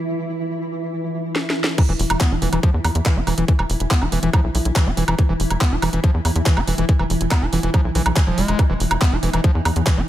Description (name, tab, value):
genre	psychedelic trance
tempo	141 BPM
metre	4/4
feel	straight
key	unclear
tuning	A4 = 440 Hz
part	pulsing gated texture	sustained chords	0.0-10.1 s	E3 to E4	-26 LUFS	equal	chorus, built-in reverb, sidechain pumping
part	granular cloud pad	texture	0.0-0.9 s	E4 to E5	-32 LUFS	right 1 dB	built-in reverb, sidechain pumping
part	garage drum kit	drums	1.4-10.0 s	crash cymbal, handclaps, hi-hat, snare drum, woodblock	-24 LUFS	right 1 dB	overdrive
part	overdriven acid bass	riff	1.8-10.0 s	E3 to E4	-25 LUFS	moving between left 4 dB and right 2 dB	distortion, auto-pan, sidechain pumping, tape echo
part	electronic kick drum	drums	1.8-10.0 s	none	-16 LUFS	equal	overdrive
part	tight sequencer bass	bass	1.9-10.0 s	E1 to E2	-21 LUFS	equal	none
room	digital ambience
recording	none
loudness	-17 LUFS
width	side -13 dB against mid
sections	0.0-1.8 A section; 1.8-10.1 B section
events	drum fill 1.4-1.8; drop 1.8-10.1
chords	0.0 E5